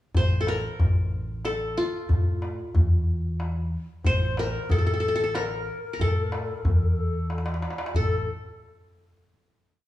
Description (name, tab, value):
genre	Arabic maqam ensemble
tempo	92 BPM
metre	3/4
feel	straight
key	A maqam kurd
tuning	A4 = 440 Hz
part	upright bass	bass	0.1-8.2 s	A1 to A2	-27 LUFS	equal	none
part	darbuka	percussion	0.1-8.2 s	none	-26 LUFS	left 1 dB	none
part	qanun	melody	0.2-8.3 s	F4 to C5	-30 LUFS	equal	none
part	low ney	second line	4.0-8.3 s	A4 to C5	-32 LUFS	left 7 dB	none
room	moderate recital hall reverb, RT60 1.3 s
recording	small room ambience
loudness	-23 LUFS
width	side -14 dB against mid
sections	0.1-7.9 A section; 7.9-9.9 final note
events	drum fill 7.3-7.9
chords	none